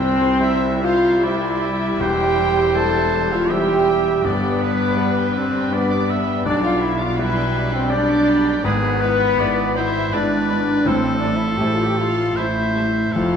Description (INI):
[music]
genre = classical, romantic movement for piano and orchestra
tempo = 81 BPM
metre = 3/4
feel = rubato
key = C major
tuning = A4 = 440 Hz
[part]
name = muted studio violin section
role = melody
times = 0.0-13.4 s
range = B4 to A5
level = -33 LUFS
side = left 1 dB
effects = none
[part]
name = warm concert grand piano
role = melody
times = 0.0-13.4 s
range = E1 to D5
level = -24 LUFS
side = left 2 dB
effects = none
[part]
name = clear clarinet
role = second line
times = 0.0-13.4 s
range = B3 to A4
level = -29 LUFS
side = equal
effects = none
[part]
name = mellow hollow silver concert flute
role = second line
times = 0.0-13.4 s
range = B4 to A5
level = -29 LUFS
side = equal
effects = none
[part]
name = muted studio violin section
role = second line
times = 0.0-13.4 s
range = C5 to D6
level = -34 LUFS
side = left 1 dB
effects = none
[part]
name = muted studio viola section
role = accompaniment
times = 0.0-13.4 s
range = F3 to E4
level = -29 LUFS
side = right 2 dB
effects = none
[part]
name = mellow French horn section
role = sustained chords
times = 0.0-13.4 s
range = B3 to A4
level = -20 LUFS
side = left 1 dB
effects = none
[part]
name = muted studio cello section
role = bass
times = 0.0-13.4 s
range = C2 to B2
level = -28 LUFS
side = right 3 dB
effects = none
[part]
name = muted studio double bass section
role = bass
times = 0.0-13.4 s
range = E1 to C2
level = -30 LUFS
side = right 4 dB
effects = none
[part]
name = timpani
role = percussion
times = 0.0-0.8 s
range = C3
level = -36 LUFS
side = equal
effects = none
[part]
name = clear oboe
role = second line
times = 0.4-13.4 s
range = G4 to E5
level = -26 LUFS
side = equal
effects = none
[sound]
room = wet recital hall reverb, RT60 1.4 s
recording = none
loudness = -16 LUFS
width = side -7 dB against mid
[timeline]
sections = 0.0-13.4 A section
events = none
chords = 0.0 C; 2.0 C/E; 4.2 G; 6.5 G/B; 8.6 E7/G#; 10.9 Am7